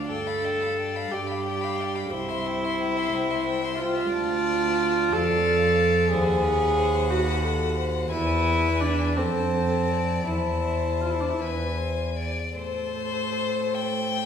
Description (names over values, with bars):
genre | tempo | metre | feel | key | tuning
classical, slow romantic movement for string quartet | 49-61 BPM (dotted quarters) | 6/8 | rubato | A minor | A4 = 438 Hz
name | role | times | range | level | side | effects
rich violin | melody | 0.0-14.3 s | C5 to C6 | -32 LUFS | left 8 dB | none
warm violin | second line | 0.0-14.3 s | A4 to F5 | -31 LUFS | left 4 dB | none
warm viola | accompaniment | 0.0-14.3 s | C4 to A4 | -25 LUFS | right 1 dB | none
warm cello | bass | 0.1-14.3 s | C2 to A2 | -28 LUFS | right 2 dB | none
room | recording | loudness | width
wet recital hall reverb, RT60 1.8 s | heard from further back in the room | -22 LUFS | side -8 dB against mid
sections
0.0-12.5 A section; 12.5-14.3 B section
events
none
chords
0.1 G7; 2.1 C; 4.1 Dm; 6.1 D#m6; 8.1 E; 9.2 F; 10.3 Am/E; 11.4 E; 12.5 Am